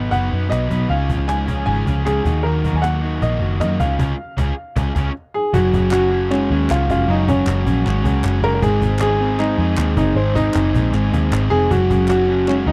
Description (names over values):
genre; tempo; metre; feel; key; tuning
jangly indie pop; 156 BPM; 4/4; straight; unclear; A4 = 439 Hz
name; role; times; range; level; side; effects
warm upright piano; melody; 0.0-12.7 s; C4 to G#5; -23 LUFS; equal; tape echo
crunchy overdriven guitar; accompaniment; 0.0-12.7 s; Gb2 to B4; -28 LUFS; equal; none
electric guitar through a small old amp; arpeggios; 0.0-12.7 s; Ab2 to Gb4; -26 LUFS; equal; spring reverb
vintage muted picked electric bass; bass; 0.0-12.7 s; F1 to F#2; -22 LUFS; equal; none
cajon; drums; 0.1-12.7 s; none; -28 LUFS; equal; none
group handclap; percussion; 5.9-12.6 s; none; -35 LUFS; equal; none
room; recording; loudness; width
little or no reverb; dry, close 1970s-style studio recording; -18 LUFS; mono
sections
0.0-5.5 A section; 5.5-12.7 B section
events
band accent 4.0-5.5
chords
0.0 B; 0.9 C#; 2.3 D#m; 3.8 C#; 5.5 Gbsus2; 8.6 Ab; 11.7 Gbsus2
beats
0.13 0.51 | 0.90 1.29 1.68 2.06 | 2.45 2.84 3.23 3.61 | 4.00 4.39 4.77 5.16 | 5.55 5.93 6.32 6.70 | 7.09 7.47 7.86 8.24 | 8.63 9.01 9.40 9.78 | 10.17 10.55 10.94 11.32 | 11.71 12.09 12.48